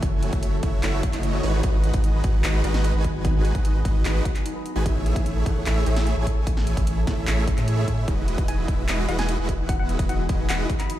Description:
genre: future bass.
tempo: 149 BPM.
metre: 4/4.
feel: half-time.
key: E major.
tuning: A4 = 442 Hz.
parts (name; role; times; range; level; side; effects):
ethereal airy pad; sustained chords; 0.0-11.0 s; C#3 to F#4; -36 LUFS; left 2 dB; none.
concert harp; arpeggios; 0.0-11.0 s; C#4 to F#5; -34 LUFS; right 1 dB; sidechain pumping, ping-pong delay.
supersaw chords; riff; 0.0-10.7 s; G#3 to G#5; -29 LUFS; right 1 dB; sidechain pumping, ping-pong delay.
saturated sub bass; bass; 0.0-10.7 s; E1 to A2; -24 LUFS; equal; sidechain pumping.
dubstep drum kit; drums; 0.0-11.0 s; handclaps, hi-hat, snare drum; -32 LUFS; equal; overdrive.
electronic kick drum; drums; 0.0-10.8 s; none; -25 LUFS; equal; overdrive.
hollow square pluck; melody; 8.5-11.0 s; F#5 to B5; -34 LUFS; left 3 dB; chorus, sidechain pumping, dub echo.
room: little or no reverb.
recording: played on a big sound system in a bare room, large studio reverb.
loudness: -20 LUFS.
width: side -13 dB against mid.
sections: 0.0-11.0 A section.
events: none.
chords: 0.0 F#m7; 1.4 G#m7; 4.9 Amaj7; 8.1 Emaj9.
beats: | 0.03 0.43 0.83 1.23 | 1.64 2.04 2.44 2.85 | 3.25 3.65 4.05 4.46 | 4.86 5.26 5.66 6.07 | 6.47 6.87 7.27 7.68 | 8.08 8.48 8.88 9.29 | 9.69 10.09 10.50 10.90.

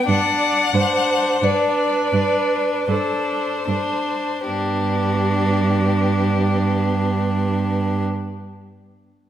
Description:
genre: classical, slow romantic movement for string quartet.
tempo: 36-47 BPM.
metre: 3/4.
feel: rubato.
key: G major.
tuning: A4 = 440 Hz.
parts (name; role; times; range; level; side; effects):
clear violin; melody; 0.0-8.0 s; G4 to F#5; -24 LUFS; left 7 dB; none.
clear violin; second line; 0.0-8.0 s; D4; -23 LUFS; left 1 dB; none.
rich viola; accompaniment; 0.0-8.0 s; B3 to D5; -24 LUFS; right 3 dB; none.
rich cello; bass; 0.1-8.0 s; G2; -22 LUFS; right 3 dB; none.
room: wet recital hall reverb, RT60 1.8 s.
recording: none.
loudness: -17 LUFS.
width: side -10 dB against mid.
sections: 0.0-4.5 A section; 4.5-9.0 B section.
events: slowing down 0.0-4.5.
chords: 0.1 D7/G; 4.5 G.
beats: | 0.08 1.42 2.89 | 4.47 5.99 7.51.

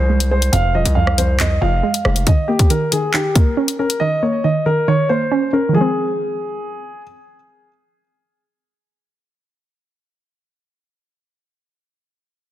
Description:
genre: hip hop, drill.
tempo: 138 BPM.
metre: 4/4.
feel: half-time.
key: F minor.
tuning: A4 = 441 Hz.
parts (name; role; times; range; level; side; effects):
dark grand piano; melody; 0.0-7.0 s; G4 to F5; -20 LUFS; equal; digital delay.
warbly dusty pluck; accompaniment; 0.0-10.3 s; F2 to Db4; -19 LUFS; right 2 dB; chorus.
distorted 808-style bass; bass; 0.0-2.3 s; Eb1 to C2; -17 LUFS; equal; distortion.
drill drum kit; drums; 0.2-4.0 s; handclaps, hi-hat, kick drum, rim click; -17 LUFS; equal; none.
room: light reverb.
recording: dense, heavily limited modern master.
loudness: -14 LUFS.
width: side -13 dB against mid.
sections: 0.0-5.7 A section; 5.7-9.2 B section.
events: none.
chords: 0.0 Fm; 2.3 Eb5; 5.7 Fm7.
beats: 0.09 | 0.53 0.96 1.40 1.83 | 2.27 2.70 3.14 3.57 | 4.01 4.44 4.88 5.31 | 5.75 6.18 6.62 7.05 | 7.49 7.92 8.36 8.79.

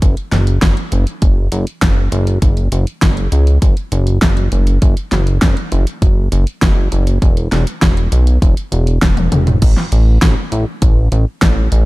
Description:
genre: synthwave.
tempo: 100 BPM.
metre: 4/4.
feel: straight.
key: F# minor.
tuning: A4 = 442 Hz.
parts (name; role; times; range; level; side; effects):
chorused synth bass; bass; 0.0-11.9 s; E1 to C#2; -13 LUFS; equal; sidechain pumping.
electronic kick drum; drums; 0.0-11.5 s; none; -13 LUFS; equal; none.
pop drum kit; drums; 0.0-11.8 s; crash cymbal, hi-hat, snare drum, toms; -18 LUFS; equal; none.
room: little or no reverb.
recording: dark, warm production.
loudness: -11 LUFS.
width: side -20 dB against mid.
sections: 0.0-9.6 A section; 9.6-11.9 B section.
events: drum fill 9.0-9.6.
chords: none.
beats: | 0.02 0.62 1.22 1.82 | 2.42 3.02 3.62 4.22 | 4.82 5.42 6.02 6.62 | 7.22 7.82 8.42 9.02 | 9.62 10.22 10.82 11.42.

